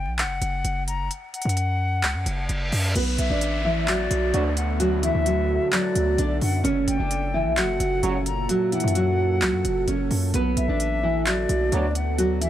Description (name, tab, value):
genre	hip hop, trap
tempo	130 BPM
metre	4/4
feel	half-time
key	B minor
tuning	A4 = 441 Hz
part	silver concert flute	second line	0.0-12.5 s	D5 to A#5	-30 LUFS	left 5 dB	ping-pong delay
part	hard-hitting 808-style bass	bass	0.0-12.5 s	F#1 to F#2	-25 LUFS	equal	none
part	trap drum kit	drums	0.2-12.5 s	crash cymbal, handclaps, hi-hat	-28 LUFS	equal	none
part	reverse cymbal and downlifter	sound effects	2.2-6.6 s	none	-33 LUFS	equal	none
part	nylon-string guitar	melody	3.0-12.5 s	E3 to D5	-24 LUFS	right 1 dB	low-pass filter, ping-pong delay
part	deep dark ambient pad	sustained chords	3.6-12.5 s	A#2 to A4	-32 LUFS	equal	chorus, built-in reverb
part	clear brass ensemble	stabs	4.3-4.5, 8.0-8.2, 11.7-11.9 s	C#2 to F#3	-31 LUFS	right 4 dB	none
room	small room ambience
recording	vinyl crackle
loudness	-21 LUFS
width	side -11 dB against mid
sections	0.0-3.0 A section; 3.0-12.5 B section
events	break 0.0-3.0; reverse cymbal 2.2-3.0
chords	0.0 N.C.; 3.0 Bm7; 6.6 F#; 10.3 Bm7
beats	0.18 0.65 | 1.11 1.57 2.03 2.49 | 2.95 3.42 3.88 4.34 | 4.80 5.26 5.72 6.18 | 6.65 7.11 7.57 8.03 | 8.49 8.95 9.42 9.88 | 10.34 10.80 11.26 11.72 | 12.19